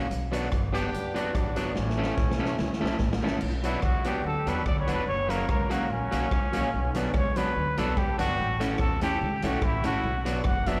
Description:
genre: ska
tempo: 145 BPM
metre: 4/4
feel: swing 53% on 8ths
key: B minor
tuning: A4 = 440 Hz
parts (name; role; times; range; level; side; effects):
- electric guitar at the edge of break-up; accompaniment; 0.0-10.8 s; F#3 to A4; -33 LUFS; equal; plate reverb, slapback echo
- upright bass; bass; 0.0-10.8 s; E1 to E2; -33 LUFS; equal; none
- swinging big-band drum kit; drums; 0.1-10.8 s; crash cymbal, hi-hat, kick drum, rim click, snare drum; -33 LUFS; equal; none
- warm horn section; melody; 0.7-3.0 s; E3 to G4; -36 LUFS; equal; tape echo, plate reverb, slapback echo
- breathy trumpet; melody; 3.6-10.8 s; C#4 to F#5; -32 LUFS; equal; tape echo, plate reverb, slapback echo
room: light reverb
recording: live gig heard through the venue's PA, recital hall reverb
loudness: -27 LUFS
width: mono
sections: 0.0-3.4 A section; 3.4-10.8 B section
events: drum fill 1.8-3.4; trumpet solo 3.4-10.8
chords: 0.1 Bm; 1.8 A; 3.4 Bm; 5.1 F#; 6.7 Bm; 8.4 A; 10.0 Bm

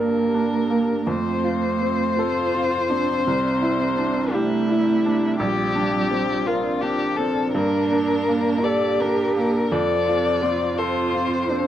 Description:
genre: neoclassical piano and strings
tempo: 56 BPM (dotted quarters)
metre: 6/8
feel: rubato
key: F major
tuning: A4 = 440 Hz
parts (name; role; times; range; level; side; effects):
- muted violin; melody; 0.0-11.7 s; E4 to D5; -24 LUFS; left 5 dB; none
- muted cello; second line; 0.0-11.7 s; G3 to A4; -24 LUFS; right 5 dB; none
- bright upright piano; accompaniment; 0.0-11.7 s; Bb1 to Bb4; -24 LUFS; right 1 dB; none
- brassy analog pad; sustained chords; 0.0-11.7 s; Bb3 to A5; -30 LUFS; equal; chorus
room: light reverb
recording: dry, close 1970s-style studio recording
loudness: -19 LUFS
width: side -11 dB against mid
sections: 0.0-11.7 A section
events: none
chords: 0.0 Gmadd9; 1.1 F; 3.3 Cadd9; 5.4 Bbadd9; 7.5 Gmadd9; 9.7 F

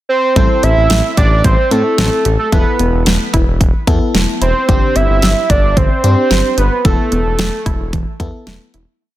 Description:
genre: synth-pop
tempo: 111 BPM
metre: 4/4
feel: straight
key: A minor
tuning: A4 = 439 Hz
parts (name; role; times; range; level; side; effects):
- fat analog lead; melody; 0.1-8.4 s; A4 to E5; -16 LUFS; right 3 dB; digital delay
- FM electric piano; accompaniment; 0.4-8.8 s; B3 to A4; -20 LUFS; left 4 dB; chorus
- analog pluck; arpeggios; 0.4-9.0 s; D3 to G4; -23 LUFS; right 2 dB; chorus, digital delay
- smooth synth bass; bass; 0.4-8.9 s; E1 to A2; -15 LUFS; equal; none
- pop drum kit; drums; 0.4-8.9 s; hi-hat, kick drum, snare drum; -15 LUFS; equal; none
room: light reverb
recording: dense, heavily limited modern master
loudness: -11 LUFS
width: side -14 dB against mid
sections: 0.0-0.4 pickup bar; 0.4-9.0 verse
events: fade-out 6.8-9.0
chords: 0.4 Am7; 2.5 Esus4; 4.7 Gsus4; 6.8 Esus4

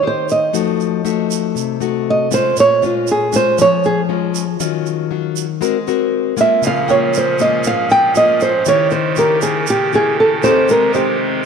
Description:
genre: bossa nova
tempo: 118 BPM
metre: 4/4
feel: straight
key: unclear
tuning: A4 = 441 Hz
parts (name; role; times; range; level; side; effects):
- nylon-string guitar; melody; 0.0-11.1 s; F4 to G5; -14 LUFS; right 3 dB; none
- nylon-string guitar; accompaniment; 0.0-11.5 s; Ab2 to C5; -19 LUFS; left 11 dB; none
- tube shaker; percussion; 0.3-11.2 s; none; -29 LUFS; right 18 dB; none
- pipe organ, clarinet reed; sustained chords; 6.6-11.5 s; Bb2 to Ab4; -22 LUFS; right 4 dB; none
- dark grand piano; accompaniment; 6.9-11.5 s; C5 to G5; -26 LUFS; right 14 dB; none
room: moderate plate reverb, RT60 2.8 s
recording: 1960s-style stereo with parts hard left and right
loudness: -13 LUFS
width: side -6 dB against mid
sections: 0.0-11.5 A section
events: nylon-string guitar solo 0.0-11.5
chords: 0.0 Abmaj7 (rootless); 0.5 F7b9; 2.6 Bbm7; 4.6 Ebm9; 5.6 Ab9; 6.6 Db6; 8.7 Eb7b9; 10.7 Abmaj7

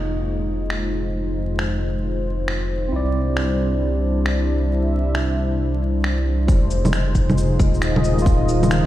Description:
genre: future garage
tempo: 135 BPM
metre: 4/4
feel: swing 65% on 16ths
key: unclear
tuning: A4 = 440 Hz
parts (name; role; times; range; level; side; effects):
- bright tine electric piano; accompaniment; 0.0-8.9 s; Eb3 to Eb5; -28 LUFS; right 3 dB; medium stereo tremolo, sidechain pumping, dub echo
- dark analog pad; sustained chords; 0.0-8.9 s; G3 to E5; -24 LUFS; left 2 dB; chorus, sidechain pumping
- dark detuned saw bass; bass; 0.0-8.9 s; Eb1 to C2; -22 LUFS; equal; sidechain pumping
- electronic finger snaps, shaker, cabasa and bongos; drums; 0.7-8.8 s; none; -25 LUFS; right 1 dB; none
- electronic kick drum; drums; 6.5-8.4 s; none; -16 LUFS; equal; none
room: light reverb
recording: played on a big sound system in a bare room, large studio reverb, vinyl crackle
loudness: -18 LUFS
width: side -14 dB against mid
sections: 0.0-6.5 A section; 6.5-8.9 B section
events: none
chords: 0.0 Fm7; 2.9 Cadd9; 6.5 Fm7

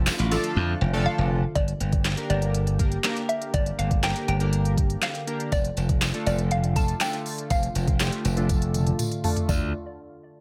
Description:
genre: dance-pop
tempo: 121 BPM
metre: 4/4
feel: straight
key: D minor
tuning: A4 = 440 Hz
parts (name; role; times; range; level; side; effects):
- hollow square pluck; melody; 0.0-9.7 s; D4 to A5; -33 LUFS; equal; chorus, low-pass filter, tape echo
- chorused retro synth keys; accompaniment; 0.0-9.7 s; F3 to Bb4; -34 LUFS; equal; sidechain pumping, low-pass filter
- chorused pulse-width pad; sustained chords; 0.0-9.7 s; D3 to G4; -37 LUFS; equal; sidechain pumping, low-pass filter
- glassy slap bass; bass; 0.0-9.7 s; F1 to F2; -27 LUFS; equal; sidechain pumping
- smooth R&B drum kit; drums; 0.1-9.6 s; handclaps, hi-hat, kick drum, snare drum, toms; -28 LUFS; equal; none
- tambourine; percussion; 0.1-0.4, 5.5-9.7 s; none; -42 LUFS; equal; none
room: digital ambience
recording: none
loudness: -25 LUFS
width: mono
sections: 0.0-1.6 A section; 1.6-9.5 B section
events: silent gap 0.6-1.6; filter sweep 1.6-9.5; drum fill 8.5-9.5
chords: 0.0 Dm; 1.6 Gm; 5.5 Dm/F; 9.5 Dm

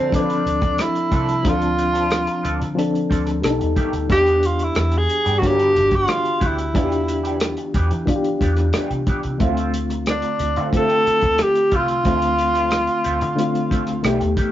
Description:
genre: lush 1970s-style soul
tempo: 90 BPM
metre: 4/4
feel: straight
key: D dorian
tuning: A4 = 440 Hz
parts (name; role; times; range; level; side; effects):
- warm tenor saxophone; melody; 0.0-14.4 s; C4 to A4; -19 LUFS; equal; none
- reed electric piano; accompaniment; 0.0-14.5 s; D3 to A4; -23 LUFS; left 2 dB; fast tremolo
- electric guitar through a small old amp; riff; 0.0-14.5 s; D#3 to B4; -30 LUFS; right 3 dB; wah, spring reverb
- vintage muted fingered electric bass; bass; 0.0-14.4 s; G1 to E3; -24 LUFS; equal; none
- warm soul drum kit; drums; 0.1-14.5 s; hi-hat, kick drum, rim click; -23 LUFS; equal; none
room: moderate studio ambience, RT60 0.5 s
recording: rough rehearsal-room recording, nothing above 7.5 kHz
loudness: -17 LUFS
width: side -12 dB against mid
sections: 0.0-14.5 A section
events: none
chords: 0.0 Dm7; 3.4 B7alt; 4.1 Em7; 9.4 Dm7

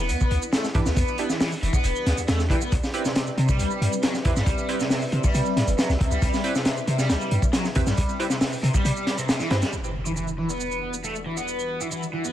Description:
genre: breakbeat, breaks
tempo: 137 BPM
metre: 4/4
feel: straight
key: E minor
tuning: A4 = 440 Hz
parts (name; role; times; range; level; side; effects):
- dark analog pad; sustained chords; 0.0-12.3 s; E3 to F#5; -33 LUFS; equal; chorus, phaser, sidechain pumping
- overdriven semi-hollow guitar; riff; 0.0-12.3 s; C3 to C4; -28 LUFS; left 1 dB; phaser, low-pass filter, digital delay
- warm 808-style bass; bass; 0.0-9.6 s; E1 to C3; -24 LUFS; equal; none
- crunchy breakbeat drum kit; drums; 0.1-9.7 s; hi-hat, kick drum, snare drum; -24 LUFS; equal; none
- shaker; drums; 0.1-12.3 s; none; -36 LUFS; right 5 dB; none
- band-passed chord stab; stabs; 0.7-9.6 s; C4 to B4; -32 LUFS; right 3 dB; analog chorus, digital delay
- impact; sound effects; 9.7-11.5 s; none; -34 LUFS; equal; none
room: small room ambience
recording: vinyl crackle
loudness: -21 LUFS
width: side -12 dB against mid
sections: 0.0-9.7 A section; 9.7-12.3 B section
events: kick drops out 8.8-9.7; impact 9.7-11.5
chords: 0.0 Em7; 2.7 Cmaj7; 9.7 Em7

